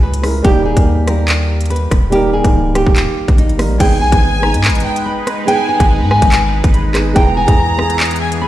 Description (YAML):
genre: hip hop, drill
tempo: 143 BPM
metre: 4/4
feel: half-time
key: G# harmonic minor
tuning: A4 = 440 Hz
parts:
  - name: nylon-string guitar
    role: melody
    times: 0.0-8.5 s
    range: D#4 to B5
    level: -18 LUFS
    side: right 1 dB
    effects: low-pass filter, ping-pong delay
  - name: dark concert grand piano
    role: accompaniment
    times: 0.0-8.5 s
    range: D#3 to B4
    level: -19 LUFS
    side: right 1 dB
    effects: low-pass filter
  - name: long sustained 808-style bass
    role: bass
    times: 0.0-8.5 s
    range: C#1 to G#2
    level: -16 LUFS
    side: equal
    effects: none
  - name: drill drum kit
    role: drums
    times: 0.1-8.4 s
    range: crash cymbal, handclaps, hi-hat, kick drum, rim click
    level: -14 LUFS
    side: equal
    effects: none
  - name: warm studio violin section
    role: second line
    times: 3.8-8.4 s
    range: G5 to A#5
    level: -21 LUFS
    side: equal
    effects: ping-pong delay
  - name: sweeping resonant pad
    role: sustained chords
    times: 3.8-8.5 s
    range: E3 to B4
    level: -22 LUFS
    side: left 2 dB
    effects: chorus
room: light reverb, small room ambience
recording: played on a big sound system in a bare room, stone room reverb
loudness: -11 LUFS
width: side -14 dB against mid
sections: 0.0-3.8 A section; 3.8-8.5 B section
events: none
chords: 0.4 D#; 3.8 G#m; 7.2 E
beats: 0.03 | 0.45 0.86 1.28 1.70 | 2.12 2.54 2.96 3.38 | 3.80 4.22 4.64 5.06 | 5.48 5.90 6.32 6.74 | 7.16 7.58 8.00 8.42